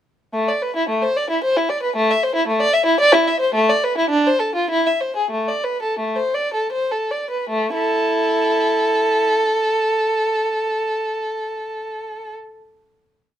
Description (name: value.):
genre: classical, baroque-style suite movement for unaccompanied violin.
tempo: 74-114 BPM.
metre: 3/4.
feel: rubato.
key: A minor.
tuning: A4 = 440 Hz.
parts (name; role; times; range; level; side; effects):
warm violin; solo; 0.3-12.3 s; A3 to E5; -17 LUFS; equal; none.
room: light reverb.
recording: minimal, uncompressed stereo recording.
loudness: -17 LUFS.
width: side -10 dB against mid.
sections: 0.3-7.5 A section; 7.5-12.3 final chord.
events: slowing down 2.7-7.5.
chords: 0.3 Am; 1.9 Amadd11; 3.6 A5; 4.1 Dm7; 4.7 E; 5.3 Am; 7.5 A5.